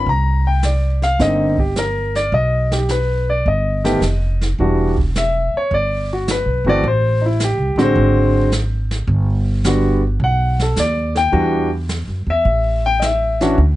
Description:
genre	jazz piano trio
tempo	107 BPM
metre	4/4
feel	swing 69% on 8ths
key	E minor from 4.6 s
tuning	A4 = 442 Hz
part	warm baby grand piano	melody	0.0-13.6 s	D3 to Bb5	-17 LUFS	left 1 dB	none
part	upright bass	bass	0.0-13.8 s	E1 to F#2	-18 LUFS	equal	none
part	jazz brush drum kit	drums	0.1-13.8 s	brushed snare drum, hi-hat, kick drum, snare drum	-24 LUFS	right 2 dB	none
room	light reverb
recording	nothing above 10.4 kHz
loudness	-15 LUFS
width	side -16 dB against mid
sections	0.0-4.6 A section; 4.6-13.8 B section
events	none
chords	0.1 Cm9; 2.3 Baug; 4.6 Em9; 6.8 Am; 8.0 G#7#11; 9.1 Gmaj7; 11.3 Em9; 12.5 Dsus2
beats	| 0.07 0.64 1.20 1.76 | 2.33 2.89 3.46 4.02 | 4.58 5.15 5.71 6.27 | 6.84 7.40 7.96 8.52 | 9.09 9.65 10.21 10.77 | 11.34 11.90 12.46 13.02 | 13.58

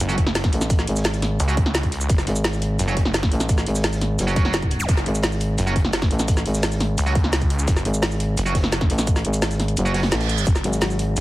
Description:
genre	dark technical drum and bass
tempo	172 BPM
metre	4/4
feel	straight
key	F# minor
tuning	A4 = 442 Hz
part	snarling distorted saw bass	bass	0.0-11.2 s	F#1 to C#2	-24 LUFS	equal	distortion, overdrive, sidechain pumping
part	crunchy breakbeat drum kit	drums	0.0-11.2 s	hi-hat, snare drum	-37 LUFS	equal	none
part	drum and bass drum kit	drums	0.0-11.2 s	hi-hat, shaker, snare drum	-24 LUFS	equal	none
part	impact, zap and reverse cymbal	sound effects	0.0-0.7, 4.8-4.9, 10.0-10.5 s	none	-32 LUFS	right 3 dB	none
part	distorted electric guitar	stabs	0.1-10.0 s	F#3 to F#4	-30 LUFS	right 4 dB	overdrive, tape echo
part	electronic kick drum	drums	0.2-10.5 s	none	-20 LUFS	equal	none
part	growling FM bass	bass	0.5-11.2 s	F#1 to A1	-22 LUFS	equal	tube saturation
part	felt-muted upright piano	arpeggios	10.6-11.2 s	F#3	-27 LUFS	left 3 dB	sidechain pumping, tape echo
room	digital ambience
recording	heavily compressed radio sound, multiband compression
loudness	-18 LUFS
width	side -17 dB against mid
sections	0.0-11.2 A section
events	impact 0.0-0.7; kick drops out 9.8-10.5; reverse cymbal 10.0-10.5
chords	0.0 F#5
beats	0.00 0.35 | 0.70 1.05 1.40 1.75 | 2.10 2.44 2.79 3.14 | 3.49 3.84 4.19 4.54 | 4.89 5.24 5.58 5.93 | 6.28 6.63 6.98 7.33 | 7.68 8.03 8.37 8.72 | 9.07 9.42 9.77 10.12 | 10.47 10.82 11.16

